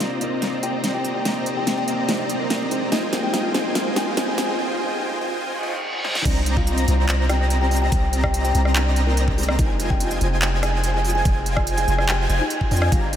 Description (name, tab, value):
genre	future bass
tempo	144 BPM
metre	4/4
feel	half-time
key	C minor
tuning	A4 = 440 Hz
part	kalimba	melody	0.0-13.1 s	Ab3 to Ab5	-27 LUFS	left 1 dB	sidechain pumping, low-pass filter, diffuse ambient delay
part	tine electric piano	accompaniment	0.0-6.3 s	Ab3 to Bb4	-32 LUFS	left 1 dB	analog chorus, sidechain pumping, diffuse ambient delay
part	dense compressed supersaw	riff	0.0-13.2 s	G3 to Bb5	-26 LUFS	right 1 dB	sidechain pumping, low-pass filter, diffuse ambient delay
part	pop drum kit	drums	0.0-13.2 s	crash cymbal, handclaps, hi-hat, ride cymbal, rim click, snare drum, toms	-26 LUFS	equal	none
part	riser and reverse cymbal	sound effects	1.5-6.3 s	none	-33 LUFS	equal	none
part	airy dreamy lead	arpeggios	6.3-13.2 s	Ab5 to Bb5	-30 LUFS	equal	chorus, sidechain pumping
part	long sustained 808-style bass	bass	6.3-13.2 s	F1 to F2	-21 LUFS	equal	sidechain pumping
part	electronic kick drum	drums	6.3-13.0 s	none	-22 LUFS	equal	none
room	wet huge ambient reverb, RT60 8.3 s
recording	dreamy mix soaked in reverb, high-pass filter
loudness	-19 LUFS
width	side -10 dB against mid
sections	0.0-6.3 A section; 6.3-13.2 B section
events	build-up 0.0-6.3; drum fill 0.0-4.6, 6.0; filter sweep on kalimba 0.0-6.3; filter sweep 0.0-6.3; break 4.6-6.3; reverse cymbal 5.6-6.3; drop 6.3-13.2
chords	0.0 Cm9; 2.9 Fm9; 6.3 Cm9; 9.6 Fm9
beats	0.00 0.42 0.84 | 1.25 1.67 2.09 2.50 | 2.92 3.34 3.75 4.17 | 4.59 5.00 5.42 5.84 | 6.25 6.67 7.09 7.50 | 7.92 8.34 8.75 9.17 | 9.59 10.00 10.42 10.84 | 11.25 11.67 12.09 12.50 | 12.92